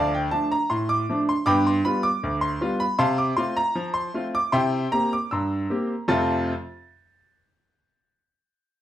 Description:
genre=ragtime piano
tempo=78 BPM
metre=2/4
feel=straight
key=F major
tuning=A4 = 441 Hz
part: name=clear baby grand piano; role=solo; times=0.0-6.5 s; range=D2 to A6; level=-21 LUFS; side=equal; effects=none
room=wet studio reverb, RT60 0.6 s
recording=heard from further back in the room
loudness=-21 LUFS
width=side -12 dB against mid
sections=0.0-6.1 A section; 6.1-7.6 B section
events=none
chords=0.0 Dm; 1.5 G7; 3.0 F/C; 4.5 C7; 6.1 F

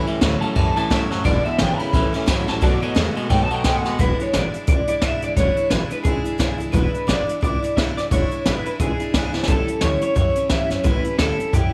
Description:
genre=rockabilly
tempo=175 BPM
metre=4/4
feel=swing 59% on 8ths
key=E mixolydian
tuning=A4 = 439 Hz
part: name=electric guitar through a small old amp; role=melody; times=0.0-11.7 s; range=G4 to B5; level=-27 LUFS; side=equal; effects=analog chorus, tape echo
part: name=picked steel-string acoustic guitar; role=accompaniment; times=0.0-11.7 s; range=E2 to F#4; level=-28 LUFS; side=equal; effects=none
part: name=twangy electric guitar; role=riff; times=0.0-4.0 s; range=E2 to G#3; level=-27 LUFS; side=equal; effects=phaser
part: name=upright bass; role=bass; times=0.1-11.7 s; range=E1 to A2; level=-27 LUFS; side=equal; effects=none
part: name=jazz brush drum kit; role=drums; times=0.1-11.6 s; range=hi-hat, kick drum, ride cymbal, snare drum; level=-24 LUFS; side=equal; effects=none
room=small room ambience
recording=none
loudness=-20 LUFS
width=mono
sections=0.0-4.0 A section; 4.0-11.7 B section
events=clean electric guitar solo 0.0-4.0; drum fill 9.3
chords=0.0 A7; 1.2 E7; 1.9 A7; 2.6 B7; 4.0 E7; 9.5 A7

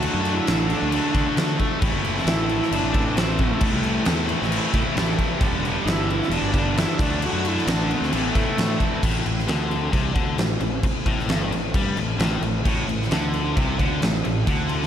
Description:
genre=classic rock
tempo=133 BPM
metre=4/4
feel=straight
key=A dorian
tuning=A4 = 440 Hz
part: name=overdriven slide guitar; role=melody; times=0.0-8.8 s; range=A3 to F#4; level=-27 LUFS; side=right 1 dB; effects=slapback echo
part: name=string machine, full ensemble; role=sustained chords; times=0.0-14.9 s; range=E3 to B4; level=-35 LUFS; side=right 3 dB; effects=none
part: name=tight distorted guitar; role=riff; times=0.0-14.9 s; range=G2 to D4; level=-27 LUFS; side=left 5 dB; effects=distortion, slapback echo
part: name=tight distorted guitar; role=riff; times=0.0-9.0, 12.6-14.9 s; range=G2 to E4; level=-30 LUFS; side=right 10 dB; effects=distortion, slapback echo
part: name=fuzz fingered electric bass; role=bass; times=0.0-14.9 s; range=E1 to D3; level=-27 LUFS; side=equal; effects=overdrive
part: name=huge arena drum kit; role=drums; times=0.0-14.9 s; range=crash cymbal, kick drum, snare drum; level=-23 LUFS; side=equal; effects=none
room=moderate lush hall reverb, RT60 1.8 s, studio ambience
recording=big arena sound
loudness=-20 LUFS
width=side -9 dB against mid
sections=0.0-9.0 A section; 9.0-14.9 B section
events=none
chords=0.0 D; 1.8 Am; 5.4 G; 7.0 D; 8.1 Am

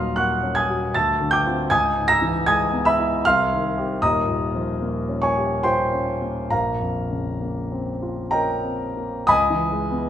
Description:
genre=classical, impressionist solo piano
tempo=57-79 BPM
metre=3/4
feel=rubato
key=Bb dorian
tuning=A4 = 440 Hz
part: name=warm concert grand piano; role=solo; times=0.0-10.1 s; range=Eb1 to Bb6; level=-19 LUFS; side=equal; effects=none
room=moderate scoring stage reverb, RT60 1.7 s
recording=recorded in a church or concert hall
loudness=-19 LUFS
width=side -10 dB against mid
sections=0.0-9.3 A section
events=none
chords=0.0 Ebm7; 0.9 Dm7; 1.7 Dbm7; 3.2 Cm; 4.0 Eb9; 6.5 Bbmadd9; 9.3 C#m9

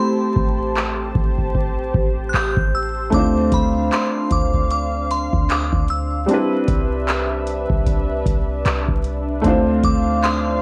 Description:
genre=contemporary R&B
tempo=76 BPM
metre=4/4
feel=swing 58% on 16ths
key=D dorian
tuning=A4 = 437 Hz
part: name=glassy synth bell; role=melody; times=0.0-10.6 s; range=B5 to G6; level=-28 LUFS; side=equal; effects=chorus, analog delay
part: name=felt-muted upright piano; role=accompaniment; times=0.0-10.6 s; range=G3 to C5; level=-24 LUFS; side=equal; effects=none
part: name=lush unison pad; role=sustained chords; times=0.0-10.6 s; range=D4 to A5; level=-28 LUFS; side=equal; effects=chorus, phaser, sidechain pumping
part: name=warm 808-style bass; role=bass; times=0.4-10.6 s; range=A1 to D2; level=-26 LUFS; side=equal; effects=none
part: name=booming analog drum machine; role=drums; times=0.4-10.5 s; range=handclaps, hi-hat, kick drum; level=-23 LUFS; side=equal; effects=none
room=moderate studio reverb, RT60 0.5 s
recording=worn, warbling old tape, cassette tape, vinyl crackle, warbly pitch drift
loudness=-19 LUFS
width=mono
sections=0.0-10.6 A section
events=break 0.0-3.1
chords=0.0 Am7; 3.1 Dm7; 6.3 Cmaj9; 9.4 Dm7

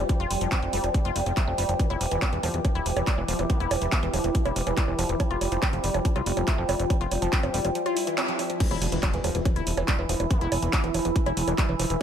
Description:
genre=psychedelic trance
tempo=141 BPM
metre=4/4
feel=straight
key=E phrygian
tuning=A4 = 440 Hz
part: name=overtone-sweeping drone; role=sustained chords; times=0.0-12.0 s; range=E3 to G4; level=-33 LUFS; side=right 2 dB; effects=chorus, built-in reverb, sidechain pumping
part: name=woody wave-folded pluck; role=riff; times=0.0-12.0 s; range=E3 to F4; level=-31 LUFS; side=equal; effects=chorus, auto-pan, sidechain pumping, digital delay
part: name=fat analog bass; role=bass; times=0.0-12.0 s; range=D1 to C2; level=-28 LUFS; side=equal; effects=none
part: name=deep dark ambient pad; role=texture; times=0.0-12.0 s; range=E4 to G5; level=-34 LUFS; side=equal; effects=chorus, built-in reverb, sidechain pumping
part: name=electronic kick drum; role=drums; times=0.1-11.7 s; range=none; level=-25 LUFS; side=equal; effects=small room ambience
part: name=techno drum kit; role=drums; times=0.1-12.0 s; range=bongos, crash cymbal, handclaps, hi-hat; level=-30 LUFS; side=right 2 dB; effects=overdrive, small room ambience
part: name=vowel-sweep wobble bass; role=second line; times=3.5-3.7, 10.3-11.7 s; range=A3 to B3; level=-40 LUFS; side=left 4 dB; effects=none
part: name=swell and impact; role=sound effects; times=7.9-10.3 s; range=none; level=-35 LUFS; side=equal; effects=none
room=light reverb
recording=none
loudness=-23 LUFS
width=side -9 dB against mid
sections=0.0-8.6 A section; 8.6-12.0 B section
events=swell 7.9-8.6; band accent 8.2; drop 8.6-12.0; impact 8.6-10.3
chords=0.0 F5; 1.8 E5; 5.2 F5; 8.6 E5

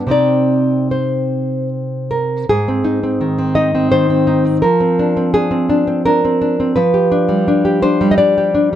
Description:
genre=romantic piece for solo classical guitar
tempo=73-86 BPM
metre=3/4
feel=rubato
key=unclear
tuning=A4 = 440 Hz
part: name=nylon-string guitar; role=solo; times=0.0-8.8 s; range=Ab2 to Eb5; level=-13 LUFS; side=equal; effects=none
room=light reverb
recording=dark, warm production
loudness=-13 LUFS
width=side -11 dB against mid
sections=0.0-2.5 A section; 2.5-8.8 B section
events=none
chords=0.1 Cm; 2.5 Ab; 4.6 Dm7b5/F; 6.8 G7/F

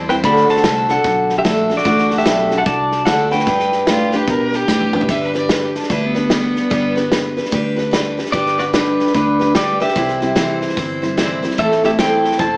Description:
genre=honky-tonk and classic country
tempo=148 BPM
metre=4/4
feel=swing 62% on 8ths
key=G major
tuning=A4 = 440 Hz
part: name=pedal steel guitar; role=melody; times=0.0-4.6, 8.3-12.6 s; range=D4 to B5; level=-16 LUFS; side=equal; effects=none
part: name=picked steel-string acoustic guitar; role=accompaniment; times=0.0-12.6 s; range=A2 to C5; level=-18 LUFS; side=equal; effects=none
part: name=vintage muted fingered electric bass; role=bass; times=0.0-12.6 s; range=E1 to B2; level=-24 LUFS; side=equal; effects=none
part: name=natural country drum kit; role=drums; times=0.1-12.5 s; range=hi-hat, kick drum, snare drum, toms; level=-20 LUFS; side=equal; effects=none
part: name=clear fiddle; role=second line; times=3.9-7.2 s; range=B3 to E5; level=-21 LUFS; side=equal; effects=none
room=wet studio reverb, RT60 0.7 s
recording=heard from further back in the room, small speaker sound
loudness=-13 LUFS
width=side -26 dB against mid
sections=0.0-5.1 A section; 5.1-8.3 B section; 8.3-12.6 C section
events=drum fill 4.7-5.1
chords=0.2 D; 3.5 G; 10.0 C; 11.6 Am

